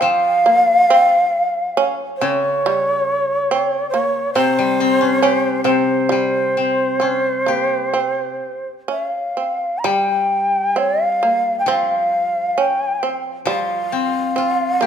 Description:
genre	japanese traditional, Japanese chamber music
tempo	61-70 BPM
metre	4/4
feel	rubato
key	C in sen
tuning	A4 = 441 Hz
part	breathy mellow shakuhachi	melody	0.0-14.9 s	C5 to Bb5	-17 LUFS	equal	none
part	shamisen	second line	0.0-14.9 s	G3 to Db4	-22 LUFS	right 6 dB	none
part	koto	accompaniment	0.0-14.9 s	C3 to G4	-22 LUFS	left 6 dB	none
room	moderate recital hall reverb, RT60 1.8 s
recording	minimal, uncompressed stereo recording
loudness	-15 LUFS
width	side -8 dB against mid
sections	0.0-9.8 A section; 9.8-14.9 B section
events	none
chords	none

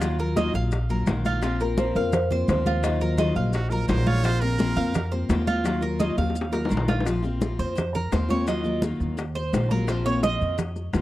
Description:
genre	latin, Cuban son and guajira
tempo	170 BPM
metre	4/4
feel	straight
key	unclear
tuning	A4 = 440 Hz
part	picked steel-string acoustic guitar	accompaniment	0.0-11.0 s	Eb3 to F4	-28 LUFS	left 2 dB	none
part	Cuban tres	arpeggios	0.0-10.6 s	F4 to F5	-30 LUFS	right 4 dB	none
part	upright bass	bass	0.0-11.0 s	Bb1 to F2	-26 LUFS	equal	none
part	bongos	percussion	0.0-11.0 s	none	-33 LUFS	left 4 dB	none
part	congas	percussion	0.0-11.0 s	none	-28 LUFS	left 1 dB	none
part	maracas	percussion	0.0-11.0 s	none	-46 LUFS	left 7 dB	none
part	kalimba	melody	1.6-3.8 s	Bb4 to F5	-27 LUFS	left 1 dB	none
part	brilliant trumpet	second line	3.5-5.1 s	Gb4 to Db5	-32 LUFS	right 4 dB	none
room	small room ambience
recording	dry, close 1970s-style studio recording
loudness	-22 LUFS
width	side -15 dB against mid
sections	0.0-7.1 A section; 7.1-11.0 B section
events	drum fill 6.2-7.1; Cuban tres solo 7.1-11.0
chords	0.0 Ebmadd9; 1.4 Bbsus2; 2.8 Ebmadd9; 4.2 Bbsus2; 5.7 Ebmadd9; 7.1 Bbsus2; 8.5 Ebmadd9; 9.9 Bbsus2

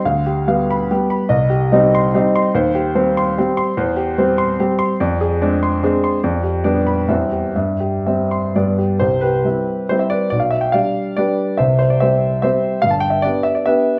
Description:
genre	classical, romantic triple-time dance for piano with dotted rhythms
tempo	117-157 BPM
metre	3/4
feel	rubato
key	C minor, C major from 3.8 s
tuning	A4 = 437 Hz
part	warm grand piano	solo	0.0-14.0 s	G1 to C6	-17 LUFS	equal	none
room	wet large studio reverb, RT60 1.2 s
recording	none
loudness	-17 LUFS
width	mono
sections	0.0-9.0 A section; 9.0-14.0 B section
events	none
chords	0.0 G7/D; 1.3 Cm; 2.5 Cm/Eb; 3.8 C/E; 5.0 Dm7b5/F; 6.2 G7/F; 7.1 C/E; 7.5 C/G; 8.5 G; 9.0 C; 10.3 G7/B; 11.6 C; 12.8 G

